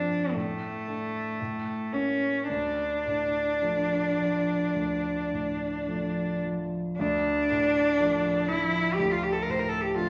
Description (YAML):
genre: classical, romantic duo for cello and grand piano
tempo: 52-62 BPM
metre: 4/4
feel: rubato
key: D minor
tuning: A4 = 440 Hz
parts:
  - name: clear cello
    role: melody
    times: 0.0-10.1 s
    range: A3 to C5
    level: -29 LUFS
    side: equal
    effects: none
  - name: dark concert grand piano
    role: accompaniment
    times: 0.0-10.1 s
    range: D2 to D4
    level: -34 LUFS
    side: equal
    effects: none
room: wet recital hall reverb, RT60 1.3 s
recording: none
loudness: -28 LUFS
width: mono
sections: 0.0-7.0 A section; 7.0-10.1 A section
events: none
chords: 0.3 D5/A; 1.4 A; 2.5 Dm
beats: 0.34 1.39 | 2.48 3.60 4.74 5.87 | 6.97 7.98 8.97 9.94